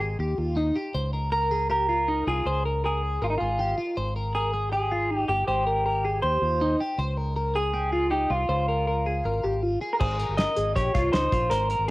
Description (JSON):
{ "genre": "jangly indie pop", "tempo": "159 BPM", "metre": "4/4", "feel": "straight", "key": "unclear", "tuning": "A4 = 439 Hz", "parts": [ { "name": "twelve-string electric guitar", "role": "arpeggios", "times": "0.0-11.9 s", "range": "Eb4 to C5", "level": "-28 LUFS", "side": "left 1 dB", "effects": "phaser, cassette tape" }, { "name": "fingered electric bass", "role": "bass", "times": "0.0-11.9 s", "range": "G1 to Eb2", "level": "-29 LUFS", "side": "equal", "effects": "none" }, { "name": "electric guitar through a small old amp", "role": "melody", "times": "1.3-11.9 s", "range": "Eb4 to Eb5", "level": "-26 LUFS", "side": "equal", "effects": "cassette tape" }, { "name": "cloth-damped thuddy drum kit", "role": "drums", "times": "10.0-11.8 s", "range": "crash cymbal, hi-hat, kick drum, snare drum", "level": "-28 LUFS", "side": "equal", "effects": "cassette tape" } ], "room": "light reverb, studio reverb", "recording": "home recording on cassette, vinyl crackle", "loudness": "-23 LUFS", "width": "side -19 dB against mid", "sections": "0.0-10.0 A section; 10.0-11.9 B section", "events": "none", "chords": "0.0 Abmaj7(no3); 0.9 Db6; 4.0 Abmaj7; 7.0 Db6; 10.0 Db" }